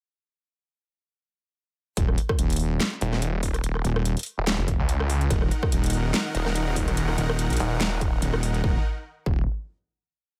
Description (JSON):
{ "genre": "heavy wobble dubstep", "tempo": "144 BPM", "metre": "4/4", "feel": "swing 55% on 16ths, half-time", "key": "Eb minor", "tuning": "A4 = 440 Hz", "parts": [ { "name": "wobble bass", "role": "bass", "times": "2.0-9.5 s", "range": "Eb1 to Bb1", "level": "-27 LUFS", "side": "equal", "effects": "chorus, overdrive" }, { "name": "dubstep drum kit", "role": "drums", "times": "2.0-8.6 s", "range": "hi-hat, rim click, snare drum", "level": "-31 LUFS", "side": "equal", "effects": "none" }, { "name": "electronic kick drum", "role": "drums", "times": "2.0-9.4 s", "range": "none", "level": "-28 LUFS", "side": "equal", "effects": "none" }, { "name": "snarling distorted saw bass", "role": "bass", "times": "3.0-8.2 s", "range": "Eb1 to Db2", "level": "-28 LUFS", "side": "equal", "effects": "distortion, overdrive" }, { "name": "supersaw chords", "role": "sustained chords", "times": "5.3-8.8 s", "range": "Eb3 to Gb5", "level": "-34 LUFS", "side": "equal", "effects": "sidechain pumping" } ], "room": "little or no reverb", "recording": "none", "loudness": "-25 LUFS", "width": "mono", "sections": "2.0-8.6 drop; 8.6-10.3 final chord", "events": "drop 2.0-8.6", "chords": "2.0 Ebm", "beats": "| 1.97 2.39 2.81 3.22 | 3.64 4.05 4.47 4.89 | 5.30 5.72 6.14 6.55 | 6.97 7.39 7.80 8.22 | 8.64 9.05" }